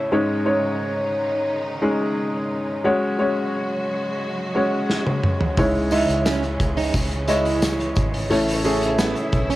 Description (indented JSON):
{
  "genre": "piano-driven pop",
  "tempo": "88 BPM",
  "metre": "4/4",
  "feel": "straight",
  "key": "C# minor",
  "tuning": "A4 = 440 Hz",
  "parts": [
    { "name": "dark upright piano", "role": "accompaniment", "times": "0.0-9.6 s", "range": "G#2 to E5", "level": "-21 LUFS", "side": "left 1 dB", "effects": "cassette tape" },
    { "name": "clear studio string section", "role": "sustained chords", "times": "0.0-9.6 s", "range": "C#3 to F#4", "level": "-31 LUFS", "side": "right 1 dB", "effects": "cassette tape" },
    { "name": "loose indie drum kit", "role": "drums", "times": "4.9-9.6 s", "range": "hi-hat, kick drum, snare drum, toms", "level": "-23 LUFS", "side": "equal", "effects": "cassette tape" },
    { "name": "vintage muted fingered electric bass", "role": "bass", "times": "5.6-9.6 s", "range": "G#1 to C#2", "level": "-28 LUFS", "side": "equal", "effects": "none" },
    { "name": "tambourine", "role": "percussion", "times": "5.6-9.1 s", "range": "none", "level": "-37 LUFS", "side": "left 2 dB", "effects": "none" },
    { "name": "fingerpicked plugged-in steel-string acoustic guitar", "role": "riff", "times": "5.9-9.6 s", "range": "B3 to E4", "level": "-27 LUFS", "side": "right 6 dB", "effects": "cassette tape" }
  ],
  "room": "moderate studio reverb, RT60 0.6 s",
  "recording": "home recording on cassette",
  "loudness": "-19 LUFS",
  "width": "side -16 dB against mid",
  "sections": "0.0-9.6 A section",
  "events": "drum fill 4.9-5.6",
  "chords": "0.1 G#sus4; 2.8 F#sus2; 5.6 C#madd9; 8.3 A",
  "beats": "| 0.12 0.80 1.48 2.17 | 2.85 3.53 4.21 4.89 | 5.58 6.26 6.94 7.62 | 8.31 8.99"
}